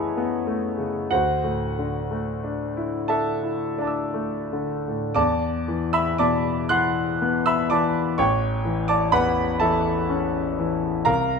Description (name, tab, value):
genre	classical, impressionist solo piano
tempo	26-43 BPM (dotted quarters)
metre	6/8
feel	rubato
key	unclear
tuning	A4 = 441 Hz
part	clear concert grand piano	solo	0.0-11.4 s	A1 to F#6	-21 LUFS	left 1 dB	none
room	moderate large studio reverb, RT60 1.3 s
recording	minimal, uncompressed stereo recording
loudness	-21 LUFS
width	side -5 dB against mid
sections	0.0-5.2 A section; 5.2-11.4 B section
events	none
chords	0.0 F#m11; 1.1 Dadd9; 5.2 E5; 8.2 A13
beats	| 1.11 3.10 | 5.16 6.70 | 8.18 9.62 | 11.06